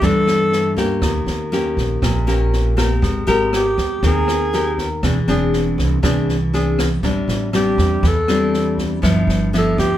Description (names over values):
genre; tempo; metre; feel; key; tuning
bossa nova; 120 BPM; 4/4; straight; unclear; A4 = 436 Hz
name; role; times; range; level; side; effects
breathy alto saxophone; melody; 0.0-10.0 s; G4 to A4; -19 LUFS; equal; none
nylon-string guitar; accompaniment; 0.0-10.0 s; G2 to Bb4; -19 LUFS; left 1 dB; none
upright bass; bass; 0.0-10.0 s; E1 to G2; -21 LUFS; right 1 dB; none
open jazz drum kit; drums; 0.0-9.8 s; kick drum, rim click, snare drum; -24 LUFS; equal; none
room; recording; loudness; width
light reverb; band playing live in one room; -15 LUFS; side -12 dB against mid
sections
0.0-10.0 A section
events
alto saxophone solo 0.0-10.0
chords
0.0 C69 (rootless); 1.0 Eb7; 3.0 Abmaj9; 5.0 Eaug7; 7.0 Am7; 9.0 G13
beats
0.03 0.53 | 1.03 1.53 2.03 2.53 | 3.03 3.53 4.03 4.53 | 5.03 5.53 6.03 6.53 | 7.03 7.53 8.03 8.53 | 9.03 9.53